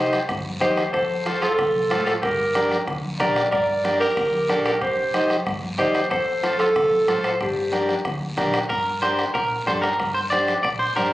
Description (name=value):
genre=latin, cumbia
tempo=186 BPM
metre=4/4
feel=straight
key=G minor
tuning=A4 = 441 Hz
part: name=warm clarinet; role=melody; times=0.0-8.0 s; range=G4 to D5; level=-21 LUFS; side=equal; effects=none
part: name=semi-hollow electric guitar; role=second line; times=0.0-11.1 s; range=D4 to D5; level=-26 LUFS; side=equal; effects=none
part: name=combo organ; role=accompaniment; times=0.0-11.1 s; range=D4 to D5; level=-25 LUFS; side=equal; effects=none
part: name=hollow-body short-scale fingered electric bass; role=bass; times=0.0-11.1 s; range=C2 to Bb2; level=-35 LUFS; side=equal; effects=none
part: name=bombo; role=percussion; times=0.1-11.1 s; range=none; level=-28 LUFS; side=equal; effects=none
part: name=congas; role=percussion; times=0.1-11.1 s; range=none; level=-35 LUFS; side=equal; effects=none
part: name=guiro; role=percussion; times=0.1-11.1 s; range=none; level=-36 LUFS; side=left 1 dB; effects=none
room=light reverb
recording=recorded on a phone in the room, club reverb, compression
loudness=-19 LUFS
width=side -16 dB against mid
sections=0.0-8.7 A section; 8.7-11.1 B section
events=clean electric guitar solo 8.7-11.1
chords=0.0 Cm; 0.9 F; 2.2 Gm; 4.8 Cm; 6.1 F; 7.4 Gm